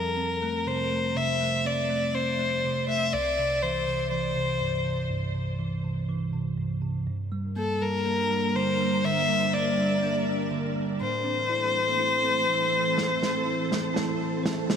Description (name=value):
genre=pop ballad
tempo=61 BPM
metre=4/4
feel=straight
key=F major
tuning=A4 = 440 Hz
part: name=warm violin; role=melody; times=0.0-14.4 s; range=A4 to E5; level=-26 LUFS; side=left 2 dB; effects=tape echo
part: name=bell-like tine electric piano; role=accompaniment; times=0.0-14.8 s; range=C2 to A5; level=-29 LUFS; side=right 2 dB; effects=analog chorus
part: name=ethereal airy pad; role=sustained chords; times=7.5-14.8 s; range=E3 to Bb4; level=-31 LUFS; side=right 1 dB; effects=ensemble chorus, built-in reverb
part: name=snare drum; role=drums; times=13.0-14.8 s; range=none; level=-30 LUFS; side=right 2 dB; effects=none
room=wet huge ambient reverb, RT60 4.9 s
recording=dreamy mix soaked in reverb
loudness=-24 LUFS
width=side -7 dB against mid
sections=0.0-14.8 A section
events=drum fill 13.0-14.8; tine electric piano fill 13.5-14.8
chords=0.0 Fadd9; 3.1 C; 7.1 Gm; 11.0 Am